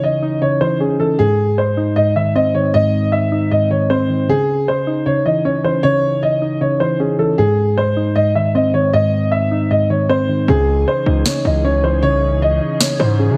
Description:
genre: hip hop, trap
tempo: 155 BPM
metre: 4/4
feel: half-time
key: C# harmonic minor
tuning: A4 = 440 Hz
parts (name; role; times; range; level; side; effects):
- dark grand piano; melody; 0.0-13.3 s; G#4 to E5; -19 LUFS; equal; none
- soft electric-piano-like synth keys; accompaniment; 0.0-13.4 s; G#2 to D#4; -20 LUFS; equal; chorus
- glassy FM pad; sustained chords; 10.5-13.4 s; E3 to G#4; -32 LUFS; equal; ensemble chorus, built-in reverb
- distorted 808-style bass; bass; 10.5-13.4 s; B#1 to C#3; -19 LUFS; equal; distortion
- electronic snare drum; drums; 11.3-12.9 s; none; -21 LUFS; equal; none
room: light reverb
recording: none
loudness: -16 LUFS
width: mono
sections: 0.0-13.4 A section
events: hi-hats muted 10.5-13.4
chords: 0.0 C#madd9; 1.2 G#; 4.3 C#madd9; 7.4 G#; 10.5 C#madd9

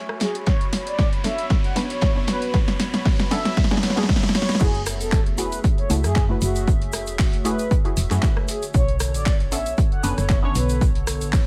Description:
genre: deep house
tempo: 116 BPM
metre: 4/4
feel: swing 55% on 16ths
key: F# minor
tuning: A4 = 440 Hz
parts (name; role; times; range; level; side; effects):
- hollow soft pad; sustained chords; 0.0-11.5 s; D3 to B5; -36 LUFS; equal; chorus, sidechain pumping
- filtered dub chord stab; stabs; 0.0-11.5 s; A3 to C#5; -31 LUFS; equal; phaser, sidechain pumping
- riser; sound effects; 0.0-4.6 s; none; -37 LUFS; equal; none
- deep dark ambient pad; texture; 0.0-11.5 s; B3 to G#5; -38 LUFS; equal; chorus, built-in reverb, sidechain pumping
- deep house drum kit; drums; 0.1-11.4 s; crash cymbal, handclaps, hi-hat, rim click, snare drum; -28 LUFS; equal; overdrive
- mellow horn-like synth lead; melody; 0.2-10.8 s; F#4 to F#5; -32 LUFS; equal; chorus, digital delay
- warm soul drum kit; drums; 0.2-11.5 s; hi-hat, snare drum; -42 LUFS; equal; none
- woody FM bass; bass; 0.5-11.5 s; E1 to F#2; -27 LUFS; equal; tube saturation, sidechain pumping, high-pass filter
- electronic kick drum; drums; 0.5-11.4 s; none; -23 LUFS; equal; none
- egg shaker; percussion; 4.6-11.4 s; none; -37 LUFS; equal; none
room: light reverb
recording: vinyl crackle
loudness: -21 LUFS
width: mono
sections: 0.0-4.6 A section; 4.6-11.5 B section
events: build-up 0.0-4.6; drum fill 0.0-4.6; riser 0.0-4.6; filter sweep on synth stab 0.0-4.6; drop 4.6-11.5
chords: 0.2 Bm9; 4.6 F#m9; 8.5 Bm9

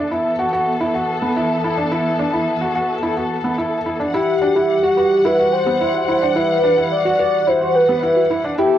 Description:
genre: piano and strings electronica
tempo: 108 BPM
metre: 4/4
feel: straight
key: E minor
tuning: A4 = 440 Hz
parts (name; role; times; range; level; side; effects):
- muted studio string section; sustained chords; 0.0-8.8 s; E3 to F#5; -23 LUFS; left 2 dB; cassette tape
- felt-muted upright piano; riff; 0.0-8.8 s; B3 to F#4; -20 LUFS; equal; cassette tape, analog delay
- warm velvety synth lead; melody; 4.1-8.8 s; G4 to D5; -15 LUFS; equal; chorus, cassette tape
- warbly dusty pluck; arpeggios; 4.1-8.7 s; E4 to G5; -27 LUFS; right 2 dB; none
room: wet booth ambience, RT60 0.3 s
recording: home recording on cassette, nothing above 11.0 kHz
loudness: -15 LUFS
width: side -11 dB against mid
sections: 0.0-8.8 A section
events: none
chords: 0.0 Asus2; 4.1 Emadd9

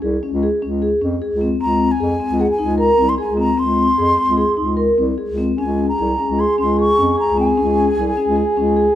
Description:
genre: contemporary instrumental, chamber music in an uneven meter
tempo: 151 BPM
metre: 5/4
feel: straight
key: Db major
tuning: A4 = 440 Hz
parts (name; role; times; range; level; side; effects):
- vibraphone with soft mallets; arpeggios; 0.0-8.9 s; C4 to Bb4; -19 LUFS; left 2 dB; none
- mellow bass clarinet; bass; 0.0-8.9 s; C2 to F2; -20 LUFS; right 1 dB; none
- bright wooden flute; melody; 1.6-8.7 s; Gb5 to Db6; -20 LUFS; right 1 dB; none
- warm French horn; second line; 5.6-9.0 s; Ab4; -19 LUFS; left 1 dB; none
room: light reverb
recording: none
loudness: -15 LUFS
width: side -12 dB against mid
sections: 0.0-9.0 A section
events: none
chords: 0.0 Db5; 1.6 Abadd9; 5.6 Db5

